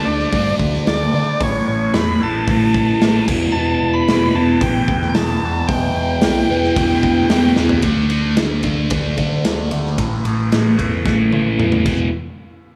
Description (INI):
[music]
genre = classic rock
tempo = 112 BPM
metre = 4/4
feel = straight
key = E minor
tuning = A4 = 444 Hz
[part]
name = overdriven tonewheel organ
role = melody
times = 0.0-7.5 s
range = C#5 to B5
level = -25 LUFS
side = equal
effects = digital delay
[part]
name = overdriven electric guitar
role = riff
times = 0.0-12.1 s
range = E2 to D4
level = -20 LUFS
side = equal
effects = phaser
[part]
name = hollow-body short-scale picked electric bass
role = bass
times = 0.1-12.1 s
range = E1 to D3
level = -24 LUFS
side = equal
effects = none
[part]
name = big rock drum kit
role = drums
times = 0.2-12.0 s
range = crash cymbal, hi-hat, kick drum, ride cymbal, snare drum, toms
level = -23 LUFS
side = equal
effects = none
[sound]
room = light reverb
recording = small room reverb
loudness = -17 LUFS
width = mono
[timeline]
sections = 0.0-7.8 A section; 7.8-12.1 B section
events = drum fill 7.6, 11.1-12.1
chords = 0.0 D5; 1.4 A5; 3.3 E5; 5.7 Em; 7.8 D5; 10.0 A5; 11.9 E5; 12.1 N.C.